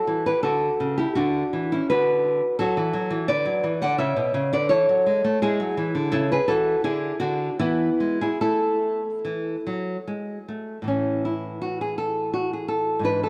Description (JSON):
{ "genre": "classical, baroque-style dance for nylon-string guitar", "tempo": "72-88 BPM", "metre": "3/4", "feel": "rubato", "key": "A major", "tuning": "A4 = 439 Hz", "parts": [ { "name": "nylon-string guitar", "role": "solo", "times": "0.0-13.3 s", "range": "G#2 to F#5", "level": "-24 LUFS", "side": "equal", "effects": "none" } ], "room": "wet plate reverb, RT60 3.3 s", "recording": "heard from further back in the room", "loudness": "-24 LUFS", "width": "mono", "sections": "0.0-10.9 A section; 10.9-13.3 B section", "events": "none", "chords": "0.0 D; 1.9 Bm7/D; 3.3 E5/D; 4.0 A; 5.4 E7; 6.1 A/C#; 6.8 Dadd9; 7.6 E; 8.4 A5" }